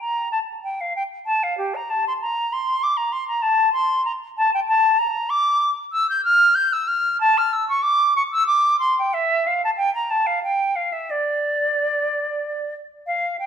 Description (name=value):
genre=classical, baroque-style fantasia for unaccompanied flute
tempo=95 BPM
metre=3/4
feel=rubato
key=D minor from 5.3 s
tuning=A4 = 440 Hz
part: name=silver concert flute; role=solo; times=0.0-13.5 s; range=G4 to G6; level=-18 LUFS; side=equal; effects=none
room=moderate recital hall reverb, RT60 1.5 s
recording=minimal, uncompressed stereo recording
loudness=-18 LUFS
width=side -8 dB against mid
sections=0.0-13.1 A section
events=none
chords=none